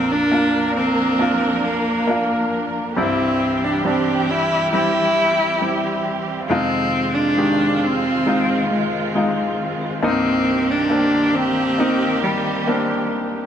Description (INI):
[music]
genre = pop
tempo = 68 BPM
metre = 4/4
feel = straight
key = C minor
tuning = A4 = 439 Hz
[part]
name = rich cello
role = melody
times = 0.0-13.1 s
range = G3 to E4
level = -20 LUFS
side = equal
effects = none
[part]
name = clear baby grand piano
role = accompaniment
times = 0.0-13.5 s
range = Bb1 to G4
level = -22 LUFS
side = left 1 dB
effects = none
[part]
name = warm symphonic string section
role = sustained chords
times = 0.0-13.5 s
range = Eb3 to Bb4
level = -24 LUFS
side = right 2 dB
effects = none
[sound]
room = light reverb, small room reverb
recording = none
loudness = -17 LUFS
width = side -9 dB against mid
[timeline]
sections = 0.0-13.5 A section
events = none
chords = 0.0 Bb; 3.0 C; 6.5 Fm7; 10.0 Cm7